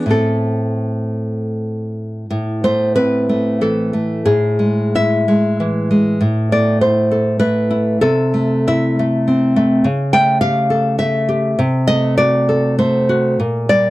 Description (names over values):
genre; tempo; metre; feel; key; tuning
romantic piece for solo classical guitar; 77-107 BPM; 3/4; rubato; A minor; A4 = 440 Hz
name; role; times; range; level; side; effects
nylon-string guitar; solo; 0.0-13.9 s; A2 to G5; -14 LUFS; equal; none
room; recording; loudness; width
light reverb; dry, close 1970s-style studio recording; -14 LUFS; side -18 dB against mid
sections
0.0-2.3 A section; 2.3-13.9 B section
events
none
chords
0.1 Am; 4.3 E/A; 6.2 Am; 8.0 Am/C; 9.8 A7/C#; 11.6 D7/C; 13.4 Gm/Bb